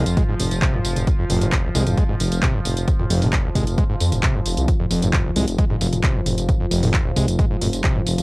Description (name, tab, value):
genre	driving peak-time techno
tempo	133 BPM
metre	4/4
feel	straight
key	F minor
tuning	A4 = 440 Hz
part	overdriven acid bass	riff	0.0-8.0 s	F1 to Ab3	-25 LUFS	equal	distortion, sidechain pumping, cassette tape, analog delay
part	detuned saw bass	bass	0.0-8.2 s	F1 to F2	-21 LUFS	equal	sidechain pumping
part	analog drone	drone	0.0-8.2 s	F3	-29 LUFS	equal	chorus, sidechain pumping, cassette tape
part	techno drum kit	drums	0.1-8.2 s	handclaps, hi-hat, tambourine, toms	-25 LUFS	equal	sidechain pumping on toms, cassette tape, sidechain pumping on hats, sidechain pumping on perc
part	electronic kick drum	drums	0.2-7.9 s	none	-20 LUFS	equal	cassette tape
room	little or no reverb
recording	home recording on cassette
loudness	-17 LUFS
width	side -25 dB against mid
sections	0.0-8.2 A section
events	none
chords	0.0 Fm